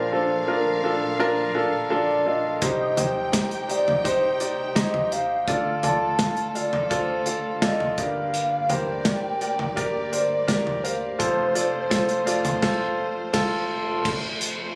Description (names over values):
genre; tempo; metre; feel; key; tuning
piano-driven pop; 84 BPM; 4/4; straight; Bb major; A4 = 440 Hz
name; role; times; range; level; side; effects
mellow horn-like synth lead; melody; 0.0-13.3 s; C5 to A5; -28 LUFS; equal; chorus, digital delay
clear concert grand piano; accompaniment; 0.0-14.1 s; F1 to F5; -28 LUFS; equal; none
warm studio string section; sustained chords; 0.0-14.8 s; C2 to G5; -36 LUFS; equal; none
modern studio drum kit; drums; 2.6-14.6 s; crash cymbal, hi-hat, kick drum, snare drum, toms; -29 LUFS; equal; none
room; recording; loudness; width
moderate plate reverb, RT60 1.8 s, small room ambience; recorded on a phone in the room, club reverb; -24 LUFS; mono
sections
0.0-14.1 A section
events
band accent 12.6-14.1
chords
0.0 Bb; 2.6 Cm; 5.5 Dm; 8.0 Gm; 11.2 F